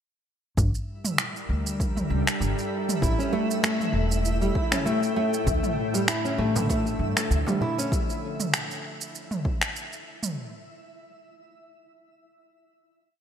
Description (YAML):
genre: organic downtempo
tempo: 98 BPM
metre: 4/4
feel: swing 55% on 16ths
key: unclear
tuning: A4 = 440 Hz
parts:
  - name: bowed-like drone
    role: sustained chords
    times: 1.1-7.9 s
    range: A2 to G5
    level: -31 LUFS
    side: equal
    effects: built-in reverb, sidechain pumping
  - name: upright bass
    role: bass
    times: 0.6-7.4 s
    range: E1 to G2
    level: -27 LUFS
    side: equal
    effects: sidechain pumping
  - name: deep house drum kit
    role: drums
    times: 0.6-10.3 s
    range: finger snaps, shaker, toms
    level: -28 LUFS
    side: right 1 dB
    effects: overdrive, small room ambience, gated reverb
  - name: electronic kick drum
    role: drums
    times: 0.6-9.6 s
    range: none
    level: -27 LUFS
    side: equal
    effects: overdrive, small room ambience
  - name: twinkling granular texture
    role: texture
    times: 1.1-10.4 s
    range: E4 to E5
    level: -37 LUFS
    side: right 1 dB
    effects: built-in reverb, lush chorus
  - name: nylon-string guitar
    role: arpeggios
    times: 3.0-7.9 s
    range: G3 to E4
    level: -28 LUFS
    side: equal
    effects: ping-pong delay
  - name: darbuka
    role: percussion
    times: 5.9-7.7 s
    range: none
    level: -35 LUFS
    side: right 2 dB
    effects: none
room: light reverb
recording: bright 1980s-style digital production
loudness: -23 LUFS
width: side -8 dB against mid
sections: 0.6-10.4 groove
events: none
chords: 0.6 Gm; 3.0 A7; 5.5 Dm; 7.9 N.C.